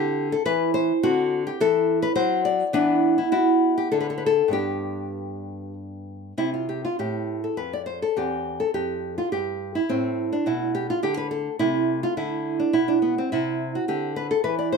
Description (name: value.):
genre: classical, baroque-style dance for nylon-string guitar.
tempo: 105 BPM.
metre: 3/4.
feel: rubato.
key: G major.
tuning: A4 = 440 Hz.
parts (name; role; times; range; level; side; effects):
nylon-string guitar; solo; 0.0-14.8 s; E2 to D5; -22 LUFS; equal; none.
room: light reverb.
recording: none.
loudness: -21 LUFS.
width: side -5 dB against mid.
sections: 0.0-6.4 A section; 6.4-14.8 A section.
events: none.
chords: 0.0 C; 1.0 D7; 2.7 E5; 3.9 N.C.; 4.5 G; 6.4 Fadd9; 8.2 C/E; 9.9 Am11; 11.6 Am/C; 13.3 C.